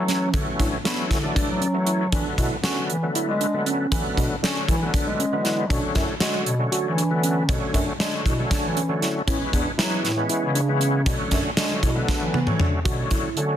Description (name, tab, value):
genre	progressive instrumental, band music in an uneven meter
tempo	235 BPM (eighths)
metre	7/8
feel	straight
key	B dorian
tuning	A4 = 439 Hz
part	overdriven tonewheel organ	accompaniment	0.0-13.6 s	D3 to D4	-26 LUFS	left 1 dB	chorus vibrato, slow rotary speaker
part	mellow bass clarinet	bass	0.0-13.6 s	E2 to C#4	-26 LUFS	equal	none
part	mellow tine electric piano	arpeggios	0.1-13.4 s	B3 to F#4	-29 LUFS	right 2 dB	medium stereo tremolo
part	gated 80s drum kit	drums	0.1-13.5 s	hi-hat, kick drum, snare drum, toms	-24 LUFS	equal	none
room	light reverb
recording	dense, heavily limited modern master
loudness	-20 LUFS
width	side -10 dB against mid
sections	0.0-12.9 A section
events	drum fill 12.1-12.9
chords	0.0 Dmaj7; 2.1 E7sus4; 5.7 Bm9; 9.3 Amaj7; 11.1 Bm7